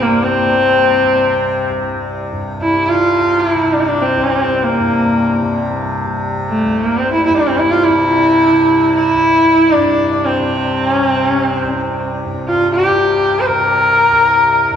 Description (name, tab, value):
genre	indian classical, Hindustani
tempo	free time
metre	none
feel	none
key	C raga khamaj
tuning	A4 = 440 Hz
part	rich sarangi	melody	0.0-14.8 s	A3 to C5	-12 LUFS	equal	none
part	tanpura	drone	0.0-14.8 s	C2 to C3	-21 LUFS	equal	none
room	wet church reverb, RT60 3.4 s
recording	recorded in a church or concert hall, faint mains hum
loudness	-12 LUFS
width	side -8 dB against mid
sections	0.0-14.8 A section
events	none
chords	none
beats	free time